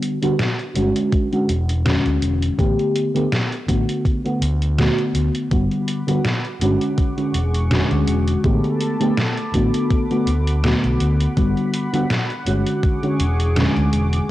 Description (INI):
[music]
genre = vaporwave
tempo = 82 BPM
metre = 4/4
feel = swing 55% on 16ths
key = unclear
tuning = A4 = 442 Hz
[part]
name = mellow FM electric piano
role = accompaniment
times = 0.0-14.3 s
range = D3 to G4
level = -20 LUFS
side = equal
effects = phaser, lush chorus, cassette tape, analog delay
[part]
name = detuned 8-bit digital drum machine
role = drums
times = 0.0-14.3 s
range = hi-hat, snare drum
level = -24 LUFS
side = equal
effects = vintage 12-bit sampler grit, cassette tape
[part]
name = overdriven fingered electric bass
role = bass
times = 0.8-14.2 s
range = E1 to D2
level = -20 LUFS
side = equal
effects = none
[part]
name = electronic kick drum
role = drums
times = 1.1-13.0 s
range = none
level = -20 LUFS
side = equal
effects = vintage 12-bit sampler grit, cassette tape
[part]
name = lush unison pad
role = sustained chords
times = 5.5-14.3 s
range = G#4 to D6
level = -30 LUFS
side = equal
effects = chorus, cassette tape
[sound]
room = light reverb, digital ambience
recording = home recording on cassette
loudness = -17 LUFS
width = side -15 dB against mid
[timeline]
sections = 0.0-14.3 A section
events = none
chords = 0.0 Gmaj7; 1.1 E13; 2.6 A9sus4; 4.1 D6; 5.5 Gmaj7; 7.0 E13; 8.4 A9sus4; 9.9 D6; 11.4 Gmaj7; 12.8 E13